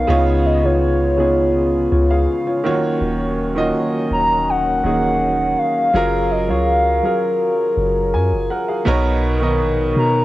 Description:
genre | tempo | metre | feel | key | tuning
contemporary R&B | 82 BPM | 4/4 | straight | F# major | A4 = 440 Hz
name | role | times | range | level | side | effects
hollow clarinet-like synth lead | melody | 0.0-10.2 s | C#5 to A#5 | -19 LUFS | equal | chorus, cassette tape, plate reverb, tape echo
warm baby grand piano | accompaniment | 0.0-10.2 s | B2 to G#5 | -21 LUFS | right 2 dB | cassette tape, plate reverb
dark French horn section | sustained chords | 0.0-10.2 s | C#3 to A#4 | -20 LUFS | left 1 dB | cassette tape, plate reverb
soft 808-style bass | bass | 0.0-10.2 s | D#1 to B2 | -20 LUFS | equal | none
room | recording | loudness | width
moderate studio reverb, RT60 0.6 s | home recording on cassette | -15 LUFS | side -16 dB against mid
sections
0.0-10.2 A section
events
none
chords
0.1 C#7; 2.6 D#m7; 5.9 F#maj9; 8.9 Bmaj7

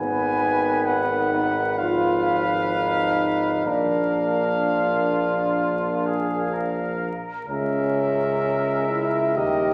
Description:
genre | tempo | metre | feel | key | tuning
classical, brass quintet | 64 BPM | 4/4 | straight | unclear | A4 = 440 Hz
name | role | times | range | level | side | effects
bright trumpet | melody | 0.0-9.7 s | D#5 to Ab5 | -28 LUFS | equal | none
warm trumpet | second line | 0.0-9.7 s | F4 to Cb5 | -33 LUFS | equal | none
clear trombone | accompaniment | 0.0-9.7 s | Eb3 to Bb3 | -32 LUFS | equal | none
warm French horn | accompaniment | 0.0-9.7 s | Cb4 to G4 | -27 LUFS | equal | none
clear tuba | bass | 0.0-9.7 s | Ab1 to D#2 | -30 LUFS | equal | none
room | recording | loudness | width
wet recital hall reverb, RT60 1.4 s | vinyl crackle | -23 LUFS | mono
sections
0.0-9.7 A section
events
none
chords
0.0 Abm; 1.8 Fdim/Ab; 3.7 Bb; 7.5 A#m7b5/C#

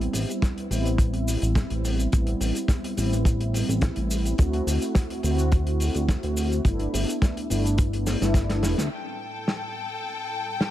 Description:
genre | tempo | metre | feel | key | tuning
nu-disco, nu disco | 106 BPM | 4/4 | straight | A dorian | A4 = 442 Hz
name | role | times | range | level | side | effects
mellow synth brass | accompaniment | 0.0-10.7 s | A2 to F#4 | -28 LUFS | equal | chorus, cassette tape, sidechain pumping, ping-pong delay
chorused synth bass | bass | 0.0-8.9 s | E1 to D2 | -25 LUFS | equal | none
warm soul drum kit | drums | 0.0-10.7 s | cabasa, hi-hat, snare drum | -30 LUFS | equal | none
kick drum | drums | 0.4-8.5 s | none | -22 LUFS | equal | none
bright studio string section | sustained chords | 8.9-10.7 s | A4 to G5 | -30 LUFS | left 4 dB | sidechain pumping
room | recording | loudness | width
little or no reverb | none | -22 LUFS | side -13 dB against mid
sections
0.0-8.9 A section; 8.9-10.7 B section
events
drum fill 8.1-8.9; band accent 8.8; filter sweep on analog polysynth 8.9-10.7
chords
0.0 Am7; 4.4 D7; 6.7 G6; 8.9 Am7

